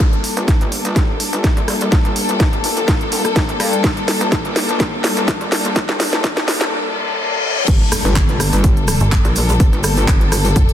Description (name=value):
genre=bass house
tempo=125 BPM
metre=4/4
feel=swing 54% on 16ths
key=G minor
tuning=A4 = 445 Hz
part: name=rich symphonic string section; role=sustained chords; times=0.0-10.7 s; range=G3 to A4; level=-21 LUFS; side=left 3 dB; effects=sidechain pumping
part: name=metallic wobble bass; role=bass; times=0.0-10.5 s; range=F1 to G2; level=-21 LUFS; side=equal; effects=chorus, tube saturation, sidechain pumping, high-pass filter
part: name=electronic kick drum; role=drums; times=0.0-10.7 s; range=none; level=-15 LUFS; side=equal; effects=none
part: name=garage drum kit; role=drums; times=0.0-10.7 s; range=crash cymbal, handclaps, hi-hat, rim click, snare drum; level=-20 LUFS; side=equal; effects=none
part: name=reverse cymbal and impact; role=sound effects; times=6.9-9.6 s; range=none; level=-23 LUFS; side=left 2 dB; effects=none
part: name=cabasa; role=percussion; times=7.7-10.7 s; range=none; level=-26 LUFS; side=right 6 dB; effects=none
part: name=metallic FM bass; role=bass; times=9.0-10.7 s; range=F1 to G1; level=-16 LUFS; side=equal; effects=tube saturation, sidechain pumping
room=light reverb, digital ambience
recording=dense, heavily limited modern master, high-pass filter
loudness=-14 LUFS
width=side -10 dB against mid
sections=0.0-7.7 A section; 7.7-10.7 B section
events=build-up 0.0-7.7; drum fill 0.0-6.7; filter sweep 0.0-7.7; reverse cymbal 6.9-7.7; drop 7.7-10.7; impact 7.7-9.6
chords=0.0 Gmadd9